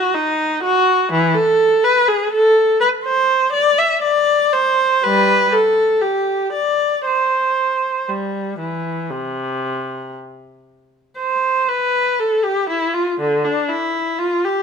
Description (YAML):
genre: classical, baroque-style suite movement for unaccompanied viola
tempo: 57-63 BPM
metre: 4/4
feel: rubato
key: C major from 3.1 s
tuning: A4 = 440 Hz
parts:
  - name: rich viola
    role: solo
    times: 0.0-14.6 s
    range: C3 to E5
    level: -15 LUFS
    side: equal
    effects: none
room: moderate stone room reverb, RT60 1.4 s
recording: minimal, uncompressed stereo recording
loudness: -15 LUFS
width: side -6 dB against mid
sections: 0.0-11.2 A section; 11.2-14.6 A section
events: none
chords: none